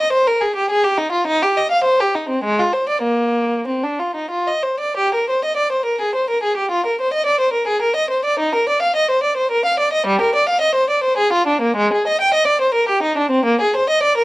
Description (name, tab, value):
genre	classical, baroque-style suite movement for unaccompanied violin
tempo	88-111 BPM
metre	3/4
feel	rubato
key	Eb major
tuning	A4 = 440 Hz
part	rich violin	solo	0.0-14.2 s	G3 to G5	-15 LUFS	equal	none
room	light reverb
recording	worn, warbling old tape, cassette tape, warbly pitch drift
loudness	-15 LUFS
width	side -19 dB against mid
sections	0.0-5.0 A section; 5.0-14.2 B section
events	none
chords	none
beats	0.15 0.71 | 1.27 1.85 2.44 | 3.05 3.68 4.32 | 4.98 5.58 6.15 | 6.72 7.27 7.82 | 8.39 8.97 9.52 | 10.07 10.62 11.18 | 11.77 12.34 12.89 | 13.45 14.03